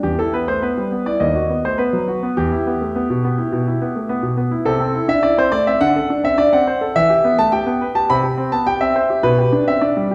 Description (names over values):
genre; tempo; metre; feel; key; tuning
classical-period piano sonatina; 104 BPM; 4/4; rubato; unclear; A4 = 440 Hz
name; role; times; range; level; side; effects
clear concert grand piano; solo; 0.0-10.1 s; D#2 to B5; -18 LUFS; equal; none
room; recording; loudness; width
wet recital hall reverb, RT60 1.3 s; heard from further back in the room; -18 LUFS; mono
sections
0.0-10.1 A section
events
none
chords
0.0 Em; 1.2 B/D#; 2.4 Em; 4.7 Am/C; 5.8 D5; 7.0 Em; 8.1 C5; 9.2 G/B